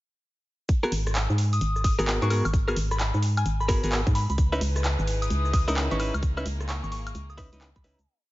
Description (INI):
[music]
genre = UK garage, two-step garage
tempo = 130 BPM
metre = 4/4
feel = swing 64% on 16ths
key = G# minor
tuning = A4 = 440 Hz
[part]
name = electronic kick drum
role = drums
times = 0.7-7.8 s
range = none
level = -24 LUFS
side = equal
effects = none
[part]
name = punchy analog drum machine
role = drums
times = 0.7-8.1 s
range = cabasa, handclaps, hi-hat, rim click, woodblock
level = -32 LUFS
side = equal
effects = none
[part]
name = direct-recorded clean electric guitar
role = stabs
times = 0.8-8.0 s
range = B3 to B4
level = -29 LUFS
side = equal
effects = none
[part]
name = organ-like FM bass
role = bass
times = 0.9-8.1 s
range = G#1 to G#2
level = -26 LUFS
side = equal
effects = tube saturation
[part]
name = soft synth bell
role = melody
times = 1.5-8.1 s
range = G#5 to D#6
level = -33 LUFS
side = left 2 dB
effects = chorus, digital delay
[part]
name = warm studio violin section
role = sustained chords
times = 4.4-8.1 s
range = A#3 to B4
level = -38 LUFS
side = equal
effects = sidechain pumping
[sound]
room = little or no reverb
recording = nothing above 7.6 kHz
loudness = -23 LUFS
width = side -17 dB against mid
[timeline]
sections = 0.7-8.1 drop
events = drop 0.7-8.1; fade-out 5.6-8.1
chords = 0.7 G#m9; 4.4 C#m9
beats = | 0.69 1.15 1.61 2.07 | 2.54 3.00 3.46 3.92 | 4.38 4.84 5.30 5.77 | 6.23 6.69 7.15 7.61